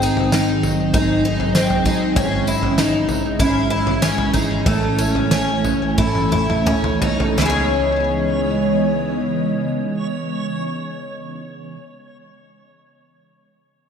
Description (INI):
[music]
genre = dream pop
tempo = 83-98 BPM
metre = 4/4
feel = straight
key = C# minor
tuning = A4 = 439 Hz
[part]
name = mellow electric guitar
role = accompaniment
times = 0.0-11.8 s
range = G#2 to A4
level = -23 LUFS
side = right 4 dB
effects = harmonic tremolo, analog chorus
[part]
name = ethereal airy pad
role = sustained chords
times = 0.0-11.0 s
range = C#3 to D#5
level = -23 LUFS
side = equal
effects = ensemble chorus, built-in reverb
[part]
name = picked twelve-string acoustic guitar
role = arpeggios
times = 0.0-11.8 s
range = A3 to C#5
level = -22 LUFS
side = left 3 dB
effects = analog chorus, ping-pong delay
[part]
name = vintage muted fingered electric bass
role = bass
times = 0.0-11.7 s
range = G#1 to C#2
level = -26 LUFS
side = equal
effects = none
[part]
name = loose indie drum kit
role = drums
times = 0.0-7.5 s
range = china cymbal, kick drum, snare drum, tambourine, toms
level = -22 LUFS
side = equal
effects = gated reverb
[part]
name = backwards swelling texture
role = texture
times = 0.0-11.0 s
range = E4 to D#5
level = -33 LUFS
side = right 1 dB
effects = built-in reverb, ping-pong delay
[sound]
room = wet lush hall reverb, RT60 2.9 s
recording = bright 1980s-style digital production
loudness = -16 LUFS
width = side -7 dB against mid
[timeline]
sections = 0.0-7.4 A section; 7.4-10.3 B section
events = slowing down 2.2-7.4; drum fill 6.0-7.4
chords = 0.0 G#; 2.2 C#m/G#; 4.7 A; 7.4 C#m9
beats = 0.33 0.95 1.56 | 2.17 2.78 3.40 4.03 | 4.67 5.32 5.99 6.67 | 7.38 8.10 8.82 9.54